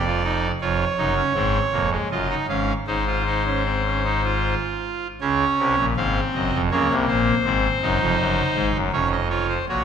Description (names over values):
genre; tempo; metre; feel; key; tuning
classical, baroque-style 3-part fugue for pipe organ; 80 BPM; 3/4; straight; Db major; A4 = 440 Hz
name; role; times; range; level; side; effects
pipe organ, trumpet; solo; 0.0-9.8 s; F1 to F5; -19 LUFS; equal; none
room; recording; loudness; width
wet concert hall reverb, RT60 1.9 s; minimal, uncompressed stereo recording; -19 LUFS; side -7 dB against mid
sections
0.0-5.2 A section; 5.2-9.7 B section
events
none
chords
0.0 Ebmaj7sus2/F; 0.6 Db/F; 2.1 Ebm/Gb; 2.9 Ab; 5.2 Db; 6.7 Bbmadd9; 7.5 Ab; 8.9 Db/F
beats
| 0.61 1.36 2.11 | 2.88 3.66 4.44 | 5.21 5.96 6.71 | 7.45 8.19 8.93 | 9.68